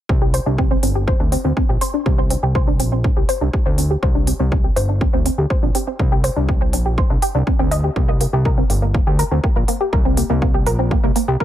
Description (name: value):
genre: melodic techno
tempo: 122 BPM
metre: 4/4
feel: straight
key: unclear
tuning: A4 = 440 Hz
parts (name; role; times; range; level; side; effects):
- woody wave-folded pluck; arpeggios; 0.1-11.4 s; Bb3 to Eb5; -21 LUFS; equal; analog chorus, sidechain pumping, tape echo
- fat analog bass; bass; 0.1-11.4 s; G1 to D2; -19 LUFS; equal; sidechain pumping
- electronic kick drum; drums; 0.1-11.4 s; none; -18 LUFS; equal; small room ambience
- electronic hi-hat; drums; 0.3-11.3 s; none; -26 LUFS; right 1 dB; small room ambience
room: little or no reverb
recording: echo-heavy mix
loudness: -15 LUFS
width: side -12 dB against mid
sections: 0.1-11.4 A section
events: none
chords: 0.1 C5; 8.0 Bbadd9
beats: | 0.09 0.58 1.08 1.57 | 2.06 2.55 3.04 3.54 | 4.03 4.52 5.01 5.50 | 5.99 6.49 6.98 7.47 | 7.96 8.45 8.95 9.44 | 9.93 10.42 10.91 11.40